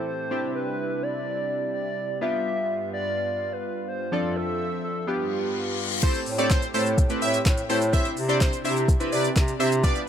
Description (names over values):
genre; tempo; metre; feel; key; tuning
dance-pop; 126 BPM; 4/4; straight; C major; A4 = 440 Hz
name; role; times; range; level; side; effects
hollow clarinet-like synth lead; melody; 0.0-5.8 s; G4 to E5; -29 LUFS; equal; chorus, ping-pong delay
chorused retro synth keys; accompaniment; 0.0-10.0 s; F3 to C5; -29 LUFS; equal; sidechain pumping
lush unison pad; sustained chords; 0.0-10.1 s; F2 to E5; -34 LUFS; right 1 dB; chorus, sidechain pumping
reverse cymbal; sound effects; 5.3-6.0 s; none; -32 LUFS; left 7 dB; none
plucky unison lead; melody; 6.0-10.0 s; C5 to E5; -28 LUFS; equal; ping-pong delay
smooth R&B drum kit; drums; 6.0-10.1 s; crash cymbal, handclaps, hi-hat, kick drum, shaker, snare drum; -23 LUFS; equal; none
warm bass clarinet; bass; 6.3-9.9 s; A2 to C3; -26 LUFS; equal; sidechain pumping
room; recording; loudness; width
digital ambience; none; -22 LUFS; side -9 dB against mid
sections
0.0-6.0 A section; 6.0-10.1 B section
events
reverse cymbal 5.3-6.0; drop 6.0-10.1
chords
0.3 Cadd9; 2.2 G7; 4.1 Dm7/F; 5.1 G7; 6.0 Am7; 7.9 Cadd9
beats
| 0.31 0.79 1.27 1.74 | 2.22 2.69 3.17 3.65 | 4.12 4.60 5.08 5.55 | 6.03 6.50 6.98 7.46 | 7.93 8.41 8.88 9.36 | 9.84